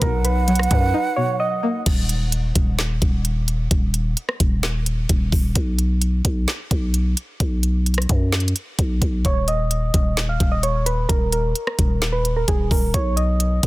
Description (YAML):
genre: hip hop, trap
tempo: 130 BPM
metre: 4/4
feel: half-time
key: unclear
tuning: A4 = 440 Hz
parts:
  - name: soft electric-piano-like synth keys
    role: melody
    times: 0.0-1.8, 9.3-13.7 s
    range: Ab4 to F5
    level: -25 LUFS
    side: right 2 dB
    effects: chorus, low-pass filter, digital delay
  - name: breathy concert flute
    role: second line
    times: 0.0-1.8 s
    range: F#5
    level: -26 LUFS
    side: right 7 dB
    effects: digital delay
  - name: string-like resonator pluck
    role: accompaniment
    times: 0.0-1.9 s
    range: A#2 to D#4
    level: -24 LUFS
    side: left 2 dB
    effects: chorus
  - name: hollow soft pad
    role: sustained chords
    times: 0.0-1.8 s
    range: F#3 to Eb4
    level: -34 LUFS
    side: equal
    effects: chorus
  - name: growling 808-style bass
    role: bass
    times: 0.0-13.7 s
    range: Eb1 to F#2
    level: -21 LUFS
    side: equal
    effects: none
  - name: trap drum kit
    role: drums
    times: 0.0-13.7 s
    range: crash cymbal, handclaps, hi-hat, kick drum, rim click, snare drum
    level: -21 LUFS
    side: equal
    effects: none
room: little or no reverb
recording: dense, heavily limited modern master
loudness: -18 LUFS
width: side -19 dB against mid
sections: 0.0-1.9 A section; 1.9-13.7 B section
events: break 0.9-1.9; filter sweep on synth keys 1.9-13.7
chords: 0.0 Bmaj7; 1.9 N.C.; 5.6 B5; 9.2 Eb5; 12.9 B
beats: | 0.02 0.48 0.94 1.40 | 1.86 2.33 2.79 3.25 | 3.71 4.17 4.63 5.09 | 5.55 6.02 6.48 6.94 | 7.40 7.86 8.32 8.79 | 9.25 9.71 10.17 10.63 | 11.09 11.55 12.02 12.48 | 12.94 13.40